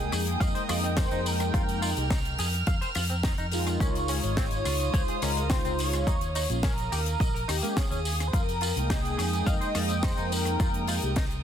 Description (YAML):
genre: nu-disco, nu disco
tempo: 106 BPM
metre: 4/4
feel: straight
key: F minor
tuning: A4 = 439 Hz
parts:
  - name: wide unison lead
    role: melody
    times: 0.0-11.2 s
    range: G4 to Eb5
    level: -33 LUFS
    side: equal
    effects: lush chorus, digital delay
  - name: mellow synth brass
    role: accompaniment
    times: 0.0-11.1 s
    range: Ab3 to G5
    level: -33 LUFS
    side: equal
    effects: chorus, digital delay
  - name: rich chamber violin section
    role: sustained chords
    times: 0.0-11.4 s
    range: Bb4 to F6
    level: -37 LUFS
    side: right 3 dB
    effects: sidechain pumping
  - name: fingered electric bass with an envelope filter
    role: bass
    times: 0.0-11.4 s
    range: Ab1 to F2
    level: -30 LUFS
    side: equal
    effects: tube saturation, sidechain pumping
  - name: direct-recorded clean electric guitar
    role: riff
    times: 0.1-11.2 s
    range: Ab3 to F5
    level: -38 LUFS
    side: left 2 dB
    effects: lush chorus, digital delay
  - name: tight funk drum kit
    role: drums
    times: 0.1-11.4 s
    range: hi-hat, rim click, snare drum, tambourine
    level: -34 LUFS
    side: left 2 dB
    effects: none
  - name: electronic kick drum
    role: drums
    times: 0.4-11.3 s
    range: none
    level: -28 LUFS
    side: equal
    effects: overdrive
room: small room reverb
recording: dense, heavily limited modern master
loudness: -25 LUFS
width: side -9 dB against mid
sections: 0.0-11.4 A section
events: none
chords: 0.0 Fm11; 3.8 Dbmaj9; 6.1 Eb9sus4; 8.3 Fm11